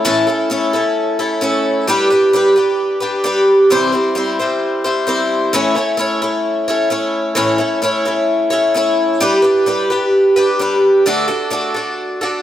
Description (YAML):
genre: rock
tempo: 131 BPM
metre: 4/4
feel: straight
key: unclear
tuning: A4 = 440 Hz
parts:
  - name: picked twelve-string acoustic guitar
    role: solo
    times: 0.0-12.4 s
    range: A2 to C#5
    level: -13 LUFS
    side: equal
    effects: none
room: light reverb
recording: none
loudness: -13 LUFS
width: side -11 dB against mid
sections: 0.0-12.4 A section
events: none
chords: 0.0 A; 1.9 G; 3.7 C; 5.5 A; 9.2 G; 11.1 D